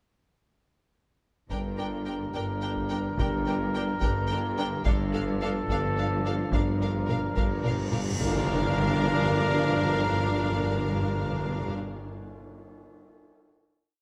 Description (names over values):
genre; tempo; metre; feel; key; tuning
cinematic, epic orchestral film score; 72 BPM (dotted quarters); 6/8; straight; G minor; A4 = 440 Hz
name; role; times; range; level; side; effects
warm symphonic violin section; melody; 1.5-11.7 s; F5 to G5; -41 LUFS; equal; none
warm symphonic violin section; second line; 1.5-11.7 s; A4 to Bb4; -41 LUFS; equal; none
rich symphonic viola section; accompaniment; 1.5-11.7 s; D4; -41 LUFS; equal; none
mellow French horn section; sustained chords; 1.5-11.7 s; F3 to D4; -37 LUFS; equal; none
warm trumpet; stabs; 1.5-11.7 s; A4 to Bb4; -36 LUFS; equal; none
rich symphonic cello section; bass; 1.5-11.7 s; G2; -36 LUFS; equal; none
warm symphonic double bass section; bass; 1.5-11.7 s; G1; -38 LUFS; equal; none
warm tuba; bass; 1.5-11.7 s; G1; -36 LUFS; equal; none
taiko ensemble; drums; 1.5-8.2 s; none; -32 LUFS; equal; none
timpani; percussion; 1.5-2.3, 6.5-11.8 s; G2; -36 LUFS; equal; none
cymbal swell and tam-tam; percussion; 4.9-10.4 s; none; -39 LUFS; equal; none
cymbal swell and impact; sound effects; 7.6-9.9 s; none; -41 LUFS; equal; none
room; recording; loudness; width
moderate scoring stage reverb, RT60 2.0 s; none; -27 LUFS; mono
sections
1.5-8.2 theme; 8.2-11.5 final chord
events
timpani fill 6.5-8.2; cymbal swell 7.6-8.2; band accent 8.2-8.8; impact 8.2-9.9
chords
1.5 Gm; 4.9 Dm/G; 6.5 Gm7